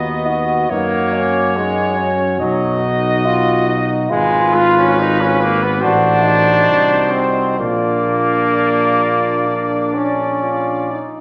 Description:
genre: classical, hymn-like piece for brass band.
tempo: 63-73 BPM.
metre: 4/4.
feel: rubato.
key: unclear.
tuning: A4 = 440 Hz.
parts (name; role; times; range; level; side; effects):
clear cornet; melody; 0.0-11.0 s; Cb5 to Eb5; -24 LUFS; equal; none.
mellow flugelhorn; second line; 0.0-11.2 s; D4 to F#4; -27 LUFS; equal; none.
bright trombone; accompaniment; 0.0-11.1 s; F#3 to F4; -19 LUFS; equal; none.
clear euphonium; accompaniment; 0.0-10.9 s; Db4 to F#4; -22 LUFS; equal; none.
dark tuba; bass; 0.0-11.0 s; Ab1 to Gb2; -24 LUFS; equal; none.
room: wet scoring stage reverb, RT60 1.7 s.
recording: none.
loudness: -16 LUFS.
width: mono.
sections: 0.0-11.2 A section.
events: none.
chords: 0.0 Ebm; 0.7 Gb; 2.4 B; 4.1 Fdim/Ab; 5.8 Adim7; 7.6 Bb.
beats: | 0.70 1.56 2.40 3.25 | 4.11 4.98 5.81 6.67 | 7.59 8.53 9.46 10.41.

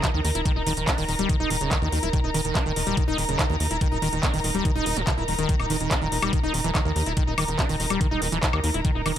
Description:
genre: psychedelic trance.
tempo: 143 BPM.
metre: 4/4.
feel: straight.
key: unclear.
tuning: A4 = 440 Hz.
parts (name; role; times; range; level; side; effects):
liquid acid bass; riff; 0.0-9.2 s; Db3 to Fb4; -27 LUFS; equal; chorus, auto-pan, cassette tape, sidechain pumping, tape echo.
drum and bass drum kit; drums; 0.0-9.2 s; handclaps, hi-hat, woodblock; -28 LUFS; equal; none.
electronic kick drum; drums; 0.0-8.9 s; none; -24 LUFS; equal; none.
muted studio string section; texture; 0.0-9.2 s; Eb4 to Bb5; -30 LUFS; equal; sidechain pumping.
tight sequencer bass; bass; 0.1-9.2 s; Eb1 to Eb2; -28 LUFS; equal; none.
room: digital ambience.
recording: none.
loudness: -21 LUFS.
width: side -10 dB against mid.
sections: 0.0-9.2 A section.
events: none.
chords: 0.0 Eb5.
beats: 0.04 | 0.46 0.88 1.29 1.71 | 2.13 2.55 2.97 3.39 | 3.81 4.23 4.65 5.07 | 5.49 5.91 6.33 6.75 | 7.17 7.59 8.01 8.43 | 8.85.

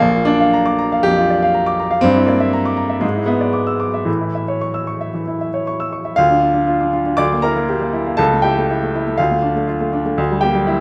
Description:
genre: classical, virtuoso piano study.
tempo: 111-123 BPM.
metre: 4/4.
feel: rubato.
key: D minor.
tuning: A4 = 439 Hz.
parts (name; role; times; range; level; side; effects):
warm baby grand piano; solo; 0.0-10.8 s; Bb1 to E6; -17 LUFS; equal; none.
room: moderate stone room reverb, RT60 1.2 s.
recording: none.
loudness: -17 LUFS.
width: mono.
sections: 0.0-6.2 A section; 6.2-10.8 B section.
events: none.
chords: 0.0 Bb6; 2.0 Em7b5/G; 3.0 E7/G#; 4.1 A; 6.2 Dm; 7.2 Em7b5/D; 8.2 A/C#; 9.2 Dm; 10.2 Em7b5/D.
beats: | 0.02 0.52 1.05 1.54 | 2.04 2.53 3.03 3.54 | 4.07 4.61 5.14 5.66 | 6.19 6.69 7.20 7.69 | 8.19 8.69 9.19 9.68 | 10.18 10.68.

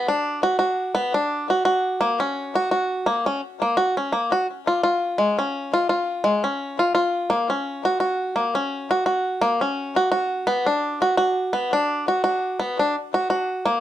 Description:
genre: folktronica.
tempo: 85 BPM.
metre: 4/4.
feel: swing 56% on 16ths.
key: F# major.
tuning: A4 = 441 Hz.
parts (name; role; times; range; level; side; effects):
bluegrass banjo; solo; 0.0-13.8 s; G#3 to F#4; -20 LUFS; equal; ping-pong delay.
room: moderate small room reverb, RT60 0.5 s.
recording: none.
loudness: -20 LUFS.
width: side -12 dB against mid.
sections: 0.0-13.8 A section.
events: none.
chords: none.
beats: 0.24 0.95 | 1.66 2.36 3.07 3.77 | 4.48 5.18 5.89 6.60 | 7.30 8.01 8.71 9.42 | 10.12 10.83 11.54 12.24 | 12.95 13.65.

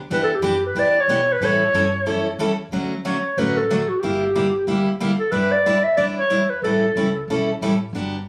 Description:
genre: acoustic string swing (jazz manouche).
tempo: 184 BPM.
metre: 4/4.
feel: swing 60% on 8ths.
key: D major.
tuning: A4 = 440 Hz.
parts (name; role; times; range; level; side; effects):
upright bass; bass; 0.0-8.3 s; G1 to B2; -34 LUFS; equal; none.
breathy clarinet; melody; 0.1-7.2 s; F#4 to E5; -21 LUFS; equal; plate reverb.
picked steel-string acoustic guitar; accompaniment; 0.1-8.2 s; D3 to B4; -25 LUFS; equal; none.
room: moderate studio reverb, RT60 0.6 s.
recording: recorded on a phone in the room, studio ambience, compression.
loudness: -20 LUFS.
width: mono.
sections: 0.0-2.7 A section; 2.7-8.3 B section.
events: none.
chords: 0.1 Em7; 1.4 A7; 2.7 Dmaj7; 4.0 Gm6; 5.3 Em7/G; 6.6 A7.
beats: | 0.11 0.44 0.76 1.09 | 1.42 1.74 2.07 2.40 | 2.72 3.05 3.37 3.70 | 4.03 4.35 4.68 5.01 | 5.33 5.66 5.99 6.31 | 6.64 6.96 7.29 7.62 | 7.94 8.27.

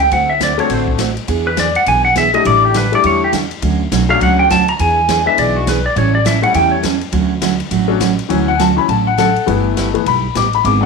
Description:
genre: country, western swing.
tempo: 205 BPM.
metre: 4/4.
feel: swing 61% on 8ths.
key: D major.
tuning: A4 = 440 Hz.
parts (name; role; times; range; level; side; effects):
clean lap steel guitar; melody; 0.0-6.8 s; F#4 to Bb5; -14 LUFS; equal; none.
upright bass; bass; 0.0-10.9 s; G1 to E2; -19 LUFS; equal; none.
swinging big-band drum kit; drums; 0.0-10.7 s; hi-hat, kick drum, ride cymbal, snare drum; -24 LUFS; left 8 dB; none.
picked steel-string acoustic guitar; accompaniment; 0.1-10.8 s; D3 to A4; -19 LUFS; right 12 dB; none.
bright upright piano; accompaniment; 0.6-10.9 s; E3 to D6; -16 LUFS; left 13 dB; none.
room: moderate plate reverb, RT60 1.0 s, studio reverb.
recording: 1960s-style stereo with parts hard left and right.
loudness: -12 LUFS.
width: side -4 dB against mid.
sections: 0.0-8.3 A section; 8.3-10.9 A section.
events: electric slide guitar solo 0.0-8.3; upright piano solo 8.3-10.9.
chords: 0.1 D7; 1.3 E7; 2.5 A7sus4; 3.6 Dmaj7; 4.8 E7; 6.0 A7; 7.1 Dmaj7; 9.5 G6.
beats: | 0.11 0.41 0.70 0.99 | 1.28 1.58 1.87 2.16 | 2.45 2.75 3.04 3.33 | 3.62 3.92 4.21 4.50 | 4.79 5.08 5.38 5.67 | 5.96 6.25 6.54 6.84 | 7.13 7.42 7.71 8.01 | 8.30 8.59 8.88 9.18 | 9.47 9.76 10.05 10.35 | 10.64.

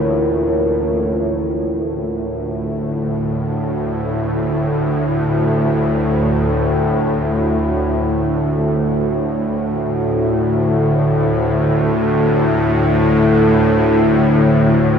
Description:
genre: dark ambient drone.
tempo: free time.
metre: none.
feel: none.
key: D harmonic minor.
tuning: A4 = 440 Hz.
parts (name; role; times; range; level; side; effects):
deep dark ambient pad; sustained chords; 0.0-1.1 s; E4 to C#5; -20 LUFS; equal; chorus, built-in reverb.
bowed-like drone; drone; 0.0-15.0 s; D2 to A2; -15 LUFS; equal; built-in reverb.
room: wet plate reverb, RT60 2.6 s.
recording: dreamy mix soaked in reverb.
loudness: -14 LUFS.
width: side -7 dB against mid.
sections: 0.0-1.1 A section; 1.1-15.0 B section.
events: filter sweep on synth drone 0.0-1.1.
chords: 0.0 Bbm; 1.1 D5.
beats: free time.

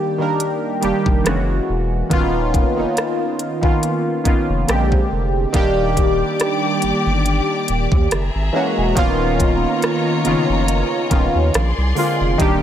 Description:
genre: contemporary R&B.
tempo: 70 BPM.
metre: 4/4.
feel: swing 54% on 16ths.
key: Eb major.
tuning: A4 = 440 Hz.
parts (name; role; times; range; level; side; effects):
warm analog keys; accompaniment; 0.0-12.6 s; Db3 to Bb4; -18 LUFS; equal; chorus, phaser.
trap drum kit; drums; 0.4-12.6 s; hi-hat, kick drum, rim click; -20 LUFS; equal; none.
saturated sub bass; bass; 0.8-12.6 s; D#1 to Eb2; -21 LUFS; equal; none.
clear studio string section; sustained chords; 5.5-12.6 s; E#4 to D6; -24 LUFS; left 2 dB; sidechain pumping.
room: light reverb, digital ambience.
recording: none.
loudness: -15 LUFS.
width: side -10 dB against mid.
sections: 0.0-5.5 A section; 5.5-12.6 B section.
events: none.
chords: 0.0 Ebmaj7; 1.3 Gb9; 2.1 Bmaj9#11/D#; 4.7 Bb13; 5.5 Ebmaj7; 8.1 Gb9; 9.0 Bmaj9#11/D#; 11.5 Bb9.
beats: 0.40 1.25 | 2.11 2.97 3.83 4.68 | 5.54 6.40 7.25 8.11 | 8.97 9.82 10.68 11.54 | 12.40.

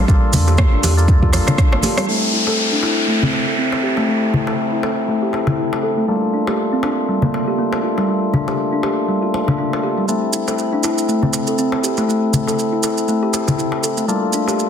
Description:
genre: afro house.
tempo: 120 BPM.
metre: 4/4.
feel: swing 57% on 16ths.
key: A phrygian.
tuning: A4 = 440 Hz.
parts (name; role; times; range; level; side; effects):
kalimba; arpeggios; 0.0-14.6 s; G3 to A4; -20 LUFS; right 1 dB; sidechain pumping, low-pass filter, ping-pong delay.
percussive tonewheel organ; stabs; 0.0-14.7 s; A3 to A4; -21 LUFS; left 2 dB; overdrive, sidechain pumping, low-pass filter, ping-pong delay.
warm sub bass; bass; 0.0-1.8 s; G1 to E2; -16 LUFS; equal; sidechain pumping.
electronic kick drum; drums; 0.1-1.7 s; none; -14 LUFS; equal; small room ambience.
congas; percussion; 0.1-1.9 s; none; -26 LUFS; right 3 dB; none.
maracas; percussion; 0.1-2.1, 10.1-14.7 s; none; -25 LUFS; right 6 dB; none.
deep house drum kit; drums; 0.3-2.1 s; hi-hat, rim click; -22 LUFS; equal; overdrive, low-pass filter on snare, small room ambience, low-pass filter on hats.
darbuka; percussion; 0.3-14.6 s; none; -23 LUFS; left 2 dB; none.
downlifter; sound effects; 2.1-6.1 s; none; -21 LUFS; equal; none.
room: moderate digital room reverb, RT60 1.3 s, small room ambience.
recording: dense, heavily limited modern master.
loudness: -15 LUFS.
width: side -8 dB against mid.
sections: 0.0-2.1 A section; 2.1-14.7 B section.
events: drum fill 1.3-2.1; filter sweep on kalimba 2.1-14.7.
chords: 0.0 Gm7; 2.1 Am; 6.1 Gm7; 10.1 Am; 14.1 Gm7.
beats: | 0.08 0.58 1.08 1.58 | 2.08 2.58 3.08 3.58 | 4.08 4.58 5.08 5.58 | 6.08 6.58 7.08 7.58 | 8.08 8.58 9.08 9.58 | 10.08 10.58 11.08 11.58 | 12.08 12.58 13.08 13.58 | 14.08 14.58.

